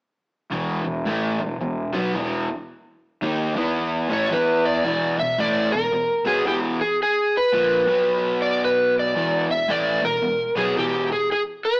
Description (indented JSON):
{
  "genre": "rock",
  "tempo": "111 BPM",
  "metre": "4/4",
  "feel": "swing 62% on 8ths",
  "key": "E mixolydian",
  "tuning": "A4 = 440 Hz",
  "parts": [
    { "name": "crunchy overdriven guitar", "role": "riff", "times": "0.5-11.1 s", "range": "E2 to E4", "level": "-24 LUFS", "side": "equal", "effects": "none" },
    { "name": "fuzz fingered electric bass", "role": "bass", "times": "0.5-4.8 s", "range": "E1 to E2", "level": "-26 LUFS", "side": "equal", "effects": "overdrive" },
    { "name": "overdriven slide guitar", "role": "melody", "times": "4.1-11.8 s", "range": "G4 to E5", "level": "-20 LUFS", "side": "equal", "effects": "none" }
  ],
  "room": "wet stone room reverb, RT60 1.2 s",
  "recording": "rough rehearsal-room recording, small speaker sound",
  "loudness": "-19 LUFS",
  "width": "side -34 dB against mid",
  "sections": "0.5-4.9 A section; 4.9-11.8 B section",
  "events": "none",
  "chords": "0.5 E5; 3.2 D#5; 3.5 E5; 4.0 A; 4.3 E5; 7.8 B5; 9.2 E5",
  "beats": "| 0.52 1.06 1.61 2.15 | 2.69 3.23 3.77 4.31 | 4.85 5.39 5.93 6.47 | 7.01 7.55 8.08 8.62 | 9.16 9.70 10.23 10.77 | 11.31"
}